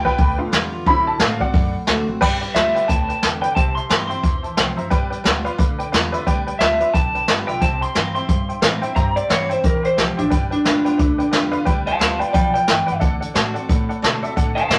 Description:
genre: rockabilly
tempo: 178 BPM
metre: 4/4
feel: swing 60% on 8ths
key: G mixolydian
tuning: A4 = 442 Hz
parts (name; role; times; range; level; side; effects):
- honky-tonk upright piano; accompaniment; 0.0-14.8 s; F#3 to B5; -27 LUFS; equal; none
- picked steel-string acoustic guitar; accompaniment; 0.0-14.8 s; G2 to F#4; -30 LUFS; equal; none
- upright bass; bass; 0.0-14.8 s; F#1 to B2; -31 LUFS; equal; none
- jazz brush drum kit; drums; 0.1-14.8 s; crash cymbal, hi-hat, kick drum, snare drum; -21 LUFS; equal; none
- electric guitar through a small old amp; melody; 2.5-14.8 s; D4 to C6; -22 LUFS; equal; none
room: moderate studio reverb, RT60 0.6 s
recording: none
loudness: -19 LUFS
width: mono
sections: 0.0-2.2 A section; 2.2-14.8 B section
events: honky-tonk piano solo 0.0-2.2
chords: 0.0 G7; 0.9 D7; 2.2 G7; 3.6 C7; 4.9 G7; 7.6 C7; 10.3 G7; 13.0 D7

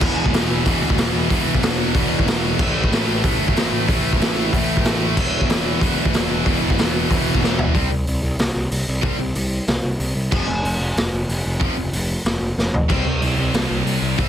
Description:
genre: punk rock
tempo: 186 BPM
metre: 4/4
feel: straight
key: unclear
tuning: A4 = 439 Hz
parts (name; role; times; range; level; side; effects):
- scooped high-gain guitar; riff; 0.0-7.7, 12.9-14.3 s; E2 to C4; -24 LUFS; right 1 dB; distortion
- tight distorted guitar; riff; 0.0-14.3 s; E2 to C4; -22 LUFS; equal; distortion
- fuzz picked electric bass; bass; 0.0-14.3 s; E1 to D2; -24 LUFS; equal; overdrive
- raw garage drum kit; drums; 0.0-14.3 s; crash cymbal, hi-hat, kick drum, snare drum, toms; -20 LUFS; equal; none
room: little or no reverb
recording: dense, heavily limited modern master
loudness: -17 LUFS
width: side -10 dB against mid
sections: 0.0-7.7 A section; 7.7-14.3 B section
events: drum fill 7.4-7.7, 12.6-12.9; half time 7.7-14.3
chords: 0.0 E5; 2.6 A5; 5.2 E5; 7.7 C5; 10.3 F5; 12.9 C5

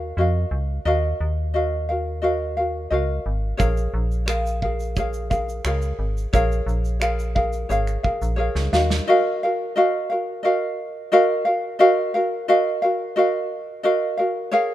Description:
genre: acoustic pop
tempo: 88 BPM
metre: 4/4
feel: straight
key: Eb minor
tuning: A4 = 437 Hz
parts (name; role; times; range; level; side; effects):
- ukulele; accompaniment; 0.0-14.7 s; Gb4 to F5; -20 LUFS; equal; none
- metallic FM bass; bass; 0.0-9.0 s; Ab1 to F2; -24 LUFS; equal; none
- loose indie drum kit; drums; 3.6-9.1 s; finger snaps, kick drum, shaker, snare drum; -26 LUFS; right 1 dB; none
room: light reverb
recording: minimal, uncompressed stereo recording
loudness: -19 LUFS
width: side -13 dB against mid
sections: 0.0-9.1 A section; 9.1-14.7 B section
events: drum fill 8.4-9.1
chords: 0.0 Ebmadd9; 3.6 Bbm7; 8.7 Ebmadd9

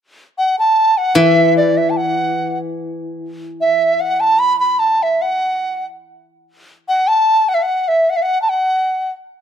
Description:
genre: chinese traditional, Chinese chamber ensemble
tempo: 74 BPM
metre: 2/4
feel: rubato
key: unclear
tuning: A4 = 440 Hz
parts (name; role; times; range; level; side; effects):
- mellow large dizi; melody; 0.4-9.1 s; D5 to B5; -14 LUFS; right 1 dB; plate reverb
- steel-string zither; accompaniment; 1.2-3.6 s; E3; -18 LUFS; left 3 dB; plate reverb
room: wet small room reverb, RT60 0.5 s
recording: none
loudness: -13 LUFS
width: side -8 dB against mid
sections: 0.0-9.4 A section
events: none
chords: none

